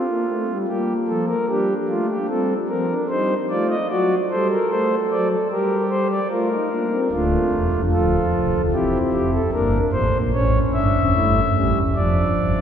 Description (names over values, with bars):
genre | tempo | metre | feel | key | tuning
classical, baroque-style 4-part fugue for pipe organ | 74 BPM | 4/4 | straight | G minor | A4 = 440 Hz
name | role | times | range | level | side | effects
pipe organ, principal | solo | 0.0-12.6 s | C1 to E5 | -18 LUFS | equal | none
room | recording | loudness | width
wet cathedral reverb, RT60 4.8 s | heard from further back in the room | -18 LUFS | side -8 dB against mid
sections
0.0-12.6 A section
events
none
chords
0.0 Dm (rootless); 0.7 Gm; 2.3 Am7b5; 3.9 D7/F#; 5.5 Gm; 7.1 Dm; 8.7 Em7b5; 10.3 A7; 12.0 Dm/F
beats
| 0.69 1.49 2.29 3.10 | 3.90 4.70 5.51 6.31 | 7.12 7.92 8.73 9.54 | 10.34 11.15 11.96